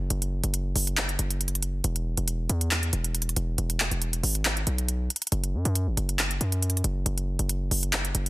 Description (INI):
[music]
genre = hip hop, trap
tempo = 138 BPM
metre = 4/4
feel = half-time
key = unclear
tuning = A4 = 440 Hz
[part]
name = hard-hitting 808-style bass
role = bass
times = 0.0-8.3 s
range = E1 to F#2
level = -27 LUFS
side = equal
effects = none
[part]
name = trap drum kit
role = drums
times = 0.1-8.3 s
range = handclaps, hi-hat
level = -27 LUFS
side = equal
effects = none
[sound]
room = digital ambience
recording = dense, heavily limited modern master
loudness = -25 LUFS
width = side -19 dB against mid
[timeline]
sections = 0.0-8.3 A section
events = none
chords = none